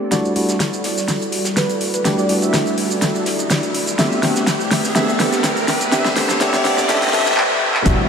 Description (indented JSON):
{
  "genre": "deep house",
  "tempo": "124 BPM",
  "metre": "4/4",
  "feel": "swing 53% on 16ths",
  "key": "E minor",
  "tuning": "A4 = 437 Hz",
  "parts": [
    { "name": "airy breathy pad", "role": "sustained chords", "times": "0.0-8.1 s", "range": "G3 to D5", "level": "-26 LUFS", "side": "equal", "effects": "chorus, sidechain pumping" },
    { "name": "tine electric piano", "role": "stabs", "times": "0.0-8.1 s", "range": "G3 to G4", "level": "-20 LUFS", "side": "equal", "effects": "analog chorus, sidechain pumping, analog delay" },
    { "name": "warm velvety synth lead", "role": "melody", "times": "0.1-7.3 s", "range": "B4 to E5", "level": "-24 LUFS", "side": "equal", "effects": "chorus, diffuse ambient delay" },
    { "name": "deep house drum kit", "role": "drums", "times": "0.1-8.0 s", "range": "handclaps, hi-hat, shaker, snare drum", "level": "-19 LUFS", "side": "equal", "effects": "overdrive" },
    { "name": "modern studio drum kit", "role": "drums", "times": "0.1-8.0 s", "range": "hi-hat, snare drum", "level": "-30 LUFS", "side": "right 1 dB", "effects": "none" },
    { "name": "riser and impact", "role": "sound effects", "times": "1.5-8.1 s", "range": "none", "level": "-25 LUFS", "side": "equal", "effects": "none" },
    { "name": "round analog bass", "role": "bass", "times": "7.9-8.0 s", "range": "E1", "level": "-20 LUFS", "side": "equal", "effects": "sidechain pumping" },
    { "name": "electronic kick drum", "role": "drums", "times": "7.9-8.0 s", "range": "none", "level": "-17 LUFS", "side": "equal", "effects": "overdrive" }
  ],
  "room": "wet huge ambient reverb, RT60 8.7 s",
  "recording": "dreamy mix soaked in reverb, vinyl crackle, high-pass filter",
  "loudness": "-15 LUFS",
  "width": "side -6 dB against mid",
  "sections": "0.1-7.9 A section",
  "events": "build-up 0.1-7.9; drum fill 0.1-7.4, 7.4-7.9; filter sweep on analog synth pad 0.1-7.9; riser 1.5-7.4; impact 7.9",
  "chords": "0.1 Em11; 4.0 Am11"
}